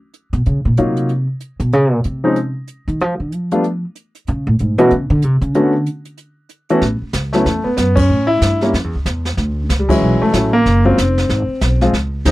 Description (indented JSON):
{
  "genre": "jazz piano trio",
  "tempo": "188 BPM",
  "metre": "4/4",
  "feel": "swing 61% on 8ths",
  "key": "unclear",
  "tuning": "A4 = 440 Hz",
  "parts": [
    { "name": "jazz brush drum kit", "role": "drums", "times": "0.1-12.3 s", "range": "brushed snare drum, hi-hat, kick drum, ride cymbal, snare drum", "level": "-22 LUFS", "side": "right 1 dB", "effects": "none" },
    { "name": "upright bass", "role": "bass", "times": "0.3-12.3 s", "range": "E#1 to F3", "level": "-16 LUFS", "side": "equal", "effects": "none" },
    { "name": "warm baby grand piano", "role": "melody", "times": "0.8-12.3 s", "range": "D3 to C#5", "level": "-15 LUFS", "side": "left 1 dB", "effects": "none" }
  ],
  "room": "little or no reverb",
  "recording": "dry, close 1970s-style studio recording",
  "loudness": "-14 LUFS",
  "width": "side -18 dB against mid",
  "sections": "0.0-6.8 A section; 6.8-12.3 B section",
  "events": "upright bass solo 0.0-6.8; band accent 7.9, 9.9",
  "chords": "0.5 D#m9; 1.1 N.C.; 1.7 C#maj7(no3); 3.0 Dm; 3.6 N.C.; 5.5 Bm7; 6.2 N.C.; 6.8 A69; 8.1 A7; 9.4 Dmaj9; 10.7 F#maj7#11; 11.3 G#6",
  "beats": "0.14 | 0.46 0.77 1.09 1.41 | 1.73 2.05 2.36 2.68 | 3.00 3.32 3.64 3.95 | 4.27 4.59 4.91 5.23 | 5.54 5.86 6.18 6.50 | 6.82 7.14 7.46 7.78 | 8.10 8.41 8.73 9.05 | 9.37 9.69 10.01 10.33 | 10.65 10.97 11.29 11.61 | 11.93 12.25"
}